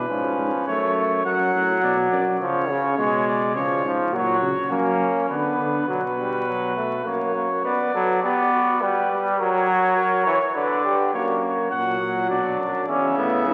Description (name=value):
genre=classical, imitative canzona for brass ensemble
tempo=103 BPM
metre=3/4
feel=straight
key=B minor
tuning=A4 = 440 Hz
part: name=clear trumpet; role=melody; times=0.0-13.5 s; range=B4 to F#5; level=-28 LUFS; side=equal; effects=none
part: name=warm flugelhorn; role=second line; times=0.0-0.7, 4.1-13.5 s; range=B3 to C#5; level=-28 LUFS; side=equal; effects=none
part: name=brilliant trombone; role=accompaniment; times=0.0-13.5 s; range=C#3 to B3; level=-25 LUFS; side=equal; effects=none
part: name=warm tuba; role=bass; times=0.0-7.6, 11.1-13.5 s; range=E2 to F#3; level=-32 LUFS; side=equal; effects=none
room=wet concert hall reverb, RT60 2.1 s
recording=very old 78 rpm record, vinyl crackle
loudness=-22 LUFS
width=mono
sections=0.0-7.6 A section; 7.6-11.1 B section; 11.1-13.5 A section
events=none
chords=0.1 C#/G#; 0.7 F#m; 1.8 Bm; 2.4 C#; 4.1 F#/A#; 5.3 Bm/D; 5.9 F#sus4/B; 7.1 F#; 7.6 Bm; 8.8 G; 9.4 F#; 10.6 Bm/D; 11.1 F#; 12.3 Bm; 12.9 C#m/E